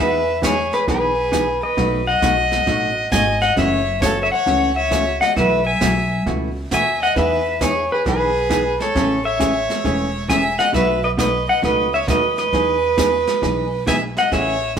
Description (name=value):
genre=country, western swing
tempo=134 BPM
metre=4/4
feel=swing 66% on 8ths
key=E major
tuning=A4 = 437 Hz
part: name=pedal steel guitar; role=melody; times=0.0-14.8 s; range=B4 to G#5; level=-20 LUFS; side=left 3 dB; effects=none
part: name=rich fiddle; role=second line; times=0.0-14.7 s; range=G#4 to E5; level=-21 LUFS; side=right 5 dB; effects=none
part: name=hollow-body jazz guitar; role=accompaniment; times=0.0-14.8 s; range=B2 to G#4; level=-24 LUFS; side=equal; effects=none
part: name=upright bass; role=bass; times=0.0-14.8 s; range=E1 to E2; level=-26 LUFS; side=equal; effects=none
part: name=jazz brush drum kit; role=drums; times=0.4-14.8 s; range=brushed snare drum, hi-hat, kick drum, snare drum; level=-25 LUFS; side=right 1 dB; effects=none
room=wet stone room reverb, RT60 1.3 s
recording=band playing live in one room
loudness=-16 LUFS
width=side -7 dB against mid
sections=0.0-14.8 A section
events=none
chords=0.0 Emaj7; 1.8 B7; 3.6 F#m7; 5.4 B7sus4; 7.2 Emaj7; 8.9 Amaj7; 10.7 B7; 12.5 Emaj7